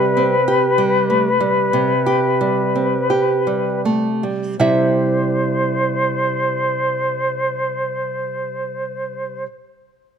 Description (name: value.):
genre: romantic duo for flute and classical guitar.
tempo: 38-50 BPM.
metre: 4/4.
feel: rubato.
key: C major.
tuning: A4 = 439 Hz.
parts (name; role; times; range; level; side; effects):
silver concert flute; melody; 0.0-9.4 s; B4 to C5; -19 LUFS; left 3 dB; none.
nylon-string guitar; accompaniment; 0.0-9.5 s; C3 to E5; -19 LUFS; right 3 dB; none.
room: light reverb.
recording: close, detailed microphones.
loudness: -16 LUFS.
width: side -7 dB against mid.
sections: 0.0-4.6 A section; 4.6-10.1 B section.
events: slowing down 0.0-4.6.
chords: 0.0 C5; 4.6 C.